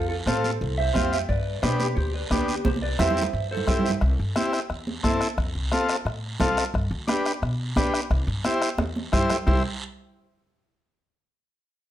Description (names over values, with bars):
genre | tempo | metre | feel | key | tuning
latin, cumbia | 176 BPM | 4/4 | straight | C major | A4 = 440 Hz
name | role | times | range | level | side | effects
mellow electric guitar | melody | 0.0-3.9 s | F4 to E5 | -29 LUFS | right 3 dB | spring reverb, plate reverb
upright bass | bass | 0.0-9.6 s | C2 to B2 | -28 LUFS | equal | none
overdriven combo organ | accompaniment | 0.3-9.6 s | B3 to C5 | -26 LUFS | left 1 dB | plate reverb
bombo | percussion | 0.3-9.6 s | none | -28 LUFS | left 1 dB | none
congas | percussion | 0.3-9.6 s | none | -29 LUFS | right 3 dB | none
guiro | percussion | 0.3-9.6 s | none | -36 LUFS | right 4 dB | none
room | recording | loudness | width
wet studio reverb, RT60 0.6 s | rough home demo mix | -22 LUFS | side -12 dB against mid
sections
0.0-4.0 A section; 4.0-9.5 B section; 9.5-10.8 C section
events
drum fill 2.7-4.0, 8.8-9.5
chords
0.0 F; 1.3 G; 2.7 C; 5.4 F; 6.7 G; 8.1 C